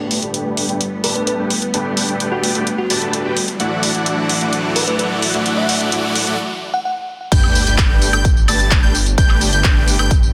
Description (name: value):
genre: EDM, festival progressive house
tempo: 129 BPM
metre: 4/4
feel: straight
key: unclear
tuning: A4 = 440 Hz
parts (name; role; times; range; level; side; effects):
- warm studio string section; sustained chords; 0.0-6.4 s; E3 to D4; -28 LUFS; equal; sidechain pumping
- dense compressed supersaw; riff; 0.0-10.1 s; A3 to A5; -23 LUFS; equal; sidechain pumping, low-pass filter, delay
- detuned saw bass; bass; 0.0-10.3 s; G1 to D2; -26 LUFS; equal; chorus, sidechain pumping, high-pass filter
- riser and sub drop; sound effects; 0.0-9.2 s; none; -30 LUFS; equal; none
- big-room dance drum kit; drums; 0.1-10.3 s; crash cymbal, handclaps, hi-hat, tambourine, woodblock; -22 LUFS; equal; none
- bell-like FM electric piano; melody; 1.0-6.9 s; F#4 to F#5; -26 LUFS; equal; chorus, phaser, delay
- plucky unison lead; arpeggios; 7.3-10.1 s; G6 to A6; -23 LUFS; equal; sidechain pumping, delay
- electronic kick drum; drums; 7.3-10.2 s; none; -16 LUFS; equal; none
room: moderate lush hall reverb, RT60 1.6 s, digital ambience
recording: dense, heavily limited modern master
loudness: -17 LUFS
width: mono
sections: 0.0-7.3 A section; 7.3-10.3 B section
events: build-up 0.0-7.3; riser 0.0-6.4; filter sweep on supersaw synth 0.0-7.3; break 6.4-7.3; drop 7.3-10.3; impact 7.3-9.2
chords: 0.0 Gadd9; 3.6 Dadd9; 7.3 Gadd9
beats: 0.34 0.81 1.27 | 1.74 2.20 2.67 3.13 | 3.60 4.06 4.53 4.99 | 5.46 5.92 6.39 6.85 | 7.32 7.78 8.25 8.71 | 9.18 9.64 10.11